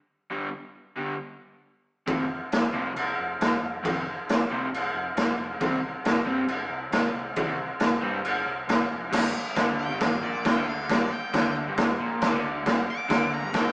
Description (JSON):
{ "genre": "garage rock duo or trio", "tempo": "136 BPM", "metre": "4/4", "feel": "straight", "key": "unclear", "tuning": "A4 = 440 Hz", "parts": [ { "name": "crunchy overdriven guitar", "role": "riff", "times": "0.3-13.7 s", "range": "F2 to C4", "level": "-31 LUFS", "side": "equal", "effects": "none" }, { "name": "growling picked electric bass", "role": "bass", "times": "2.1-13.7 s", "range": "F1 to G2", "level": "-39 LUFS", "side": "equal", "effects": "overdrive" }, { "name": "raw garage drum kit", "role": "drums", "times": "2.1-13.6 s", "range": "crash cymbal, kick drum, snare drum", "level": "-24 LUFS", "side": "equal", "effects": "none" }, { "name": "octave-fuzz lead guitar", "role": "melody", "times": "9.8-13.7 s", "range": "D5 to D6", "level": "-33 LUFS", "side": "equal", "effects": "distortion" } ], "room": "moderate stone room reverb, RT60 1.3 s", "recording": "band playing live in one room, small speaker sound", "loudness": "-24 LUFS", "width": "side -32 dB against mid", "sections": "0.0-9.1 A section; 9.1-13.7 B section", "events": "none", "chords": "0.0 G5; 2.1 F5; 5.6 C5; 9.1 G5" }